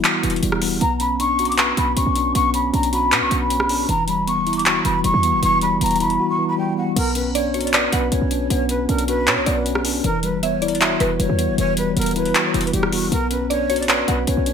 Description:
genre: hip hop, trap.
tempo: 156 BPM.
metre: 4/4.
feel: half-time.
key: B harmonic minor.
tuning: A4 = 436 Hz.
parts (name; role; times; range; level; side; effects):
mellow tine electric piano; accompaniment; 0.0-14.5 s; E3 to B4; -22 LUFS; left 1 dB; medium stereo tremolo.
short 808-style bass; bass; 0.0-14.5 s; E1 to B2; -24 LUFS; right 1 dB; none.
trap drum kit; drums; 0.0-14.5 s; crash cymbal, handclaps, hi-hat, rim click; -21 LUFS; equal; gated reverb.
breathy mellow jazz flute; melody; 0.8-14.5 s; F#4 to D6; -22 LUFS; left 1 dB; ping-pong delay.
mallet-like synth pluck; second line; 7.3-11.2, 13.5-14.3 s; B4 to F#5; -26 LUFS; right 2 dB; chorus, ping-pong delay.
room: moderate plate reverb, RT60 1.3 s, digital ambience.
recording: bright 1980s-style digital production.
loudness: -17 LUFS.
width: side -7 dB against mid.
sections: 0.0-7.0 A section; 7.0-14.5 B section.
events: break 0.0-0.8, 6.2-7.0.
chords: 0.0 Emadd9; 0.8 Bmadd9; 3.9 Emadd9; 7.0 Bmadd9; 10.0 Emadd9; 13.1 Bmadd9.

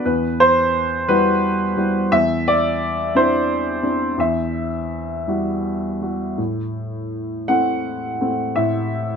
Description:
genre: classical, lyrical solo piano.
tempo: 53-59 BPM (dotted quarters).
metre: 6/8.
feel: rubato.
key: E minor.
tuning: A4 = 441 Hz.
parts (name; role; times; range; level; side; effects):
warm baby grand piano; solo; 0.0-9.2 s; E2 to F#5; -18 LUFS; equal; none.
room: light reverb.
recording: none.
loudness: -18 LUFS.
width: side -6 dB against mid.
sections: 0.0-9.2 A section.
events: none.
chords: 0.0 Emadd9; 2.1 Cadd9/E; 4.2 Emadd9; 6.4 Am.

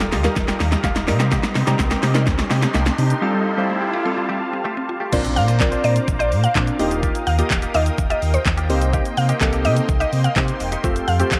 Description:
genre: dance-pop.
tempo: 126 BPM.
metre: 4/4.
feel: straight.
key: Bb major.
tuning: A4 = 443 Hz.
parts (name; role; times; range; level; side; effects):
glassy digital keys; accompaniment; 0.0-11.4 s; G3 to F5; -27 LUFS; equal; chorus, phaser, sidechain pumping.
filtered supersaw swell; sustained chords; 0.0-11.4 s; Bb3 to Eb6; -30 LUFS; equal; sidechain pumping.
direct-recorded clean electric guitar; riff; 0.0-11.4 s; A3 to C5; -33 LUFS; equal; analog chorus.
sub bass with octave; bass; 0.0-11.4 s; Eb1 to C3; -23 LUFS; equal; sidechain pumping.
pop drum kit; drums; 0.0-11.4 s; crash cymbal, handclaps, hi-hat, kick drum, shaker, snare drum; -24 LUFS; equal; none.
riser and impact; sound effects; 0.2-7.0 s; none; -32 LUFS; equal; none.
mallet-like synth pluck; arpeggios; 0.1-5.0 s; G3 to Bb4; -33 LUFS; equal; none.
mallet-like synth pluck; melody; 5.4-11.2 s; C5 to F5; -26 LUFS; equal; chorus.
room: moderate spring reverb, RT60 2.1 s.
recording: none.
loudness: -19 LUFS.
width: mono.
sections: 0.0-5.1 A section; 5.1-11.4 B section.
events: build-up 0.0-5.1; drum fill 0.0-3.2; riser 0.2-5.1; synth keys fill 0.6-1.3; break 3.2-5.1; drop 5.1-11.4; impact 5.1-7.0.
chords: 0.0 Ebadd9; 1.1 Cm7; 3.2 Fadd9; 5.1 Bbadd9; 6.8 Ebadd9; 8.7 Cm7; 10.8 Fadd9.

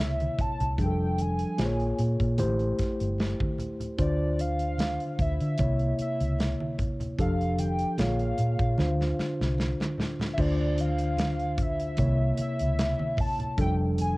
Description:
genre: lush 1970s-style soul.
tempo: 75 BPM.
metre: 4/4.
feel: swing 54% on 16ths.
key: D minor.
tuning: A4 = 440 Hz.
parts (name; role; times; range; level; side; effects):
hollow square lead; melody; 0.0-14.2 s; D5 to A5; -33 LUFS; equal; chorus.
tine electric piano; accompaniment; 0.0-14.2 s; C3 to Db5; -30 LUFS; equal; medium stereo tremolo, cassette tape.
vintage muted fingered electric bass; bass; 0.0-14.2 s; F1 to D3; -28 LUFS; equal; none.
modern studio drum kit; drums; 0.0-14.2 s; crash cymbal, hi-hat, kick drum, snare drum; -32 LUFS; equal; cassette tape.
congas; percussion; 0.2-14.2 s; none; -36 LUFS; right 2 dB; none.
room: little or no reverb.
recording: home recording on cassette.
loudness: -25 LUFS.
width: side -21 dB against mid.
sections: 0.0-10.4 A section; 10.4-14.2 A section.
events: drum fill 8.8-10.4.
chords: 0.0 C7b9; 0.8 F69; 1.6 Bbm7; 2.4 Am7; 4.0 Dm7; 5.6 C7b9; 7.2 F69; 8.0 Bbm7; 8.8 Dm7; 12.0 C7b9; 13.6 F69.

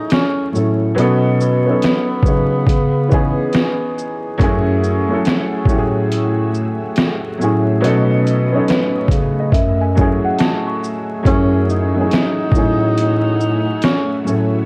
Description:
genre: lo-fi hip hop.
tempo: 70 BPM.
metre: 4/4.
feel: swing 65% on 16ths.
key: F# dorian.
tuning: A4 = 442 Hz.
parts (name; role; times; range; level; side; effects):
breathy tenor saxophone; melody; 0.0-4.4, 11.3-14.2 s; B3 to D#4; -23 LUFS; equal; low-pass filter.
warm upright piano; accompaniment; 0.0-14.7 s; E3 to D#5; -21 LUFS; equal; low-pass filter.
breathy bass clarinet; bass; 0.0-14.7 s; F#2 to C#3; -20 LUFS; equal; transformer saturation.
trip hop sampler-style drum kit; drums; 0.1-14.5 s; hi-hat, kick drum, shaker, snare drum; -19 LUFS; equal; overdrive.
string machine, cellos; sustained chords; 4.4-14.7 s; A3 to E6; -30 LUFS; equal; ensemble chorus, low-pass filter.
worn celesta; second line; 9.5-11.2 s; E5 to C#6; -26 LUFS; equal; low-pass filter.
room: light reverb, small room ambience.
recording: worn, warbling old tape, cassette tape, vinyl crackle, warbly pitch drift.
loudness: -16 LUFS.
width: mono.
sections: 0.0-11.3 A section; 11.3-14.7 A section.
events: none.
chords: 0.0 F#m9; 1.0 B9; 2.7 C#m9; 4.4 F#m9; 7.8 B9; 9.5 F#m9.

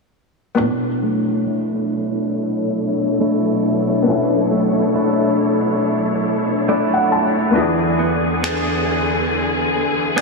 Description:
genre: contemporary R&B.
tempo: 69 BPM.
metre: 4/4.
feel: swing 58% on 16ths.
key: B dorian.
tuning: A4 = 440 Hz.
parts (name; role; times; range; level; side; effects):
felt-muted upright piano; accompaniment; 0.5-10.2 s; B3 to A5; -22 LUFS; left 4 dB; low-pass filter.
muted studio string section; sustained chords; 0.6-10.2 s; E2 to C#5; -20 LUFS; left 2 dB; low-pass filter.
direct-recorded clean electric guitar; arpeggios; 0.6-10.2 s; B2 to G#4; -21 LUFS; right 4 dB; low-pass filter, diffuse ambient delay.
electronic finger snaps; drums; 8.4-10.2 s; none; -28 LUFS; left 1 dB; overdrive.
room: wet huge ambient reverb, RT60 4.8 s.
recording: dreamy mix soaked in reverb, small room ambience.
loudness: -16 LUFS.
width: side -2 dB against mid.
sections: 0.6-10.2 A section.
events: filter sweep 0.6-10.2; felt piano fill 6.2-7.6.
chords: 0.6 Bm11; 7.6 E7.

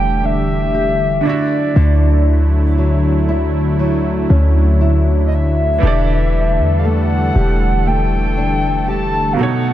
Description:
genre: contemporary R&B.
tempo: 59 BPM.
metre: 4/4.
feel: straight.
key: E minor.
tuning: A4 = 440 Hz.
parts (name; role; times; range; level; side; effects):
hollow clarinet-like synth lead; melody; 0.0-9.7 s; D5 to A5; -20 LUFS; left 1 dB; chorus, phaser, ping-pong delay.
clear baby grand piano; accompaniment; 0.0-9.7 s; B2 to E5; -22 LUFS; right 6 dB; none.
warm analog pad; sustained chords; 0.0-9.7 s; D3 to A4; -20 LUFS; right 1 dB; chorus.
nylon-string guitar; arpeggios; 0.0-9.7 s; B2 to G4; -21 LUFS; left 2 dB; none.
warm 808-style bass; bass; 0.0-9.3 s; E1 to E2; -15 LUFS; equal; none.
room: light reverb, small room ambience.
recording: none.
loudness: -13 LUFS.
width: side -12 dB against mid.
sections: 0.0-9.7 A section.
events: none.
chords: 0.0 Em11; 1.2 Dmaj9; 5.8 Em11.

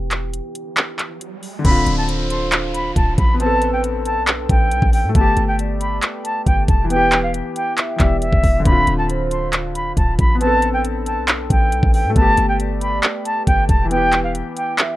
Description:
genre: hip hop, trap.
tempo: 137 BPM.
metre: 4/4.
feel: half-time.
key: A minor.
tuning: A4 = 442 Hz.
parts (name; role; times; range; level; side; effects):
dark French horn section; sustained chords; 0.0-15.0 s; D3 to B4; -30 LUFS; equal; stereo widening, plate reverb.
warm 808-style bass; bass; 0.0-14.4 s; D1 to A2; -21 LUFS; equal; none.
riser and downlifter; sound effects; 0.8-5.2 s; none; -32 LUFS; right 1 dB; none.
trap drum kit; drums; 0.1-14.9 s; crash cymbal, handclaps, hi-hat, kick drum; -17 LUFS; equal; none.
jazz flute; melody; 1.6-14.7 s; E5 to C6; -20 LUFS; equal; low-pass filter, ping-pong delay, plate reverb.
felt-muted upright piano; accompaniment; 1.6-15.0 s; D3 to A4; -24 LUFS; left 4 dB; low-pass filter.
hollow clarinet-like synth lead; second line; 2.1-15.0 s; B4 to E5; -27 LUFS; right 4 dB; chorus, ping-pong delay, plate reverb.
room: light reverb.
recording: rough home demo mix.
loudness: -15 LUFS.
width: side -16 dB against mid.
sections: 0.0-1.6 A section; 1.6-15.0 B section.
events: kick muted 0.8-1.6; riser 0.8-1.6.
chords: 0.0 Em; 1.6 Dm7; 3.4 Amadd9; 5.2 Gadd9; 6.9 Em; 8.7 Dm7; 10.4 Amadd9; 12.2 Gadd9; 13.9 Em.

